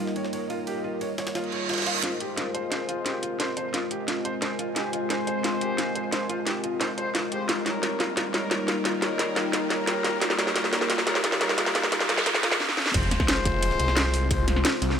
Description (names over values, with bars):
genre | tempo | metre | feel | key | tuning
dark technical drum and bass | 176 BPM | 4/4 | straight | F minor | A4 = 441 Hz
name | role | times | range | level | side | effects
deep dark ambient pad | sustained chords | 0.0-15.0 s | G3 to C5 | -33 LUFS | left 1 dB | chorus, built-in reverb, sidechain pumping
felt-muted upright piano | arpeggios | 0.0-12.5 s | F4 to F5 | -33 LUFS | equal | sidechain pumping, low-pass filter, digital delay
ethereal airy pad | texture | 0.0-12.6 s | F4 to Ab5 | -36 LUFS | equal | ensemble chorus, built-in reverb, sidechain pumping
jungle sampler-style drum kit | drums | 0.1-2.0, 12.9-14.9 s | ride cymbal, snare drum | -36 LUFS | right 1 dB | high-pass filter on cymbals, high-pass filter on snare
reverse cymbal, riser, noise sweep and sub drop | sound effects | 1.5-14.3 s | none | -34 LUFS | right 2 dB | none
warm brass ensemble | stabs | 2.0-14.6 s | G3 to C5 | -31 LUFS | left 2 dB | low-pass filter, digital delay
drum and bass drum kit | drums | 2.0-15.0 s | crash cymbal, hi-hat, snare drum | -26 LUFS | equal | low-pass filter on snare, low-pass filter on hats, low-pass filter on cymbals, low-pass filter on room
snarling distorted saw bass | bass | 12.9-15.0 s | F1 to C2 | -26 LUFS | equal | distortion, tube saturation
electronic kick drum | drums | 12.9-14.4 s | none | -28 LUFS | equal | none
room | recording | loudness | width
moderate lush hall reverb, RT60 2.1 s | high-pass filter | -23 LUFS | side -8 dB against mid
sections
0.0-2.0 A section; 2.0-12.9 B section; 12.9-15.0 C section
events
reverse cymbal 1.5-2.0; build-up 2.0-12.9; drum fill 2.0-12.6, 12.6-12.9; filter sweep on brass ensemble 2.0-12.9; noise sweep 11.6-12.9; drop 12.9-15.0; impact 12.9-14.3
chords
0.0 Eb; 2.0 Fm; 7.5 Eb; 12.9 Fm